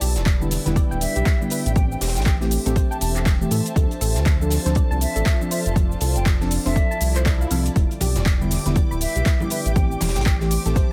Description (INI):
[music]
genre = deep house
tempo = 120 BPM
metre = 4/4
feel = swing 59% on 16ths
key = A minor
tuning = A4 = 440 Hz
[part]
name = deep dark ambient pad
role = sustained chords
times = 0.0-10.9 s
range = B3 to E5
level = -38 LUFS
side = equal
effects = none
[part]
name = soft round pluck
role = arpeggios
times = 0.0-10.9 s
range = G4 to B5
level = -36 LUFS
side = equal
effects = chorus, sidechain pumping, dub echo
[part]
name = round analog bass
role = bass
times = 0.0-10.8 s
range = D1 to A2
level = -25 LUFS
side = equal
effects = tube saturation, sidechain pumping
[part]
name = deep house drum kit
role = drums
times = 0.0-10.9 s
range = handclaps, hi-hat, shaker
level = -31 LUFS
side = equal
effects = none
[part]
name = tight funk drum kit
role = drums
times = 0.0-10.9 s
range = hi-hat, snare drum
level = -39 LUFS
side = equal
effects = sidechain pumping on hats, high-pass filter on hats, soft clipping on snare, high-pass filter on snare, high-pass filter on room
[part]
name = dark studio string section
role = texture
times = 0.0-10.9 s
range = E4 to A5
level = -37 LUFS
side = equal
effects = sidechain pumping
[part]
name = electronic kick drum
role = drums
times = 0.3-10.9 s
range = none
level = -22 LUFS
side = equal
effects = overdrive
[part]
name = deep mellow chord stab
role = stabs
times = 0.4-10.9 s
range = D3 to A4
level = -29 LUFS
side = equal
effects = chorus, sidechain pumping, dub echo
[part]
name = hollow concert flute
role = melody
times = 1.0-10.4 s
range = E5 to A5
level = -33 LUFS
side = equal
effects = dub echo
[part]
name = swell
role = sound effects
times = 6.9-7.8 s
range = none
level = -38 LUFS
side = equal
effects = none
[part]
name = analog string pad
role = texture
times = 7.9-10.9 s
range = D6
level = -40 LUFS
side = equal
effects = ensemble chorus, phaser, sidechain pumping
[part]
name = congas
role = percussion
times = 8.0-10.9 s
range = none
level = -32 LUFS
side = equal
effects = sidechain pumping on perc
[sound]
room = small room ambience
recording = dense, heavily limited modern master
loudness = -21 LUFS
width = mono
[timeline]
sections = 0.0-10.9 A section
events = swell 6.9-7.8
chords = 0.0 Em7; 1.8 Am7; 3.8 Dm7; 7.8 Em7; 9.8 Am7